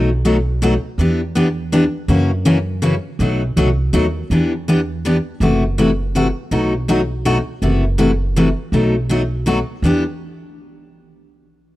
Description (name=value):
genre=acoustic string swing (jazz manouche)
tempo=163 BPM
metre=3/4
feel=swing 61% on 8ths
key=E minor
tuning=A4 = 440 Hz
part: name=picked steel-string acoustic guitar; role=accompaniment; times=0.0-10.0 s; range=B2 to G4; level=-16 LUFS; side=left 1 dB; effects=none
part: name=upright bass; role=bass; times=0.0-10.0 s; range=F#1 to F#2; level=-20 LUFS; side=right 1 dB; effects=none
room=light reverb, studio ambience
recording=dry, close 1970s-style studio recording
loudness=-15 LUFS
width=side -16 dB against mid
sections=0.0-5.4 A section; 5.4-9.8 B section; 9.8-10.9 C section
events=none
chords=0.0 B7; 1.0 Em7; 2.1 F#7; 3.2 B7b9; 4.3 Em7; 5.4 F#m7b5; 6.5 B7; 7.6 F#m7b5; 8.7 B7; 9.8 Em7